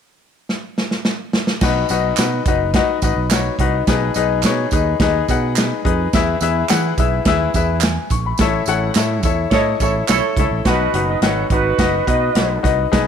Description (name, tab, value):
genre	uptempo 1960s-style soul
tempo	106 BPM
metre	4/4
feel	straight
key	B mixolydian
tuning	A4 = 441 Hz
part	natural country drum kit	drums	0.5-13.1 s	crash cymbal, hi-hat, kick drum, snare drum	-19 LUFS	right 2 dB	none
part	clear baby grand piano	accompaniment	1.6-13.1 s	A2 to C#6	-18 LUFS	left 8 dB	none
part	fingered electric bass	bass	1.6-13.1 s	F#1 to E3	-21 LUFS	right 3 dB	none
part	tambourine and handclaps	percussion	1.6-10.2 s	none	-27 LUFS	right 14 dB	none
part	mellow horn section	second line	9.5-12.6 s	D#4 to D#5	-21 LUFS	right 11 dB	none
room	light reverb, small room reverb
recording	1960s-style stereo with parts hard left and right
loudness	-15 LUFS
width	side -8 dB against mid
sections	0.0-1.6 A section; 1.6-10.7 B section; 10.7-13.1 C section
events	drum fill 0.5-1.6; band accent 8.4-10.7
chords	0.0 N.C.; 1.6 B; 3.9 G#m/B; 6.1 E; 8.4 A; 10.7 B